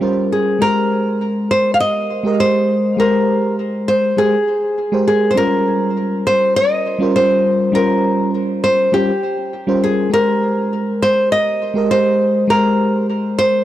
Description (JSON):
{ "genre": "chillout", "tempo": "101 BPM", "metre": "4/4", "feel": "swing 53% on 16ths", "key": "Ab major", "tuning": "A4 = 440 Hz", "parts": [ { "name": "nylon-string guitar", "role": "melody", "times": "0.0-13.6 s", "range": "G4 to F5", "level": "-16 LUFS", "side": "equal", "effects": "tape echo" }, { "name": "mellow FM electric piano", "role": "accompaniment", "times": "0.0-13.6 s", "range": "G3 to Eb5", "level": "-17 LUFS", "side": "moving between left 4 dB and right 2 dB", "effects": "chorus, auto-pan" } ], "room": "light reverb, small room reverb", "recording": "dry, gritty hardware recording", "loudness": "-14 LUFS", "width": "side -13 dB against mid", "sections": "0.6-13.6 A section", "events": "none", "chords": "0.0 Bbm13/G; 0.6 Abmaj9; 5.4 Eb13/G (rootless); 10.1 Abmaj9", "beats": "0.02 | 0.61 1.21 1.80 2.39 | 2.99 3.58 4.18 4.77 | 5.36 5.96 6.55 7.15 | 7.74 8.33 8.93 9.52 | 10.12 10.71 11.30 11.90 | 12.49 13.09" }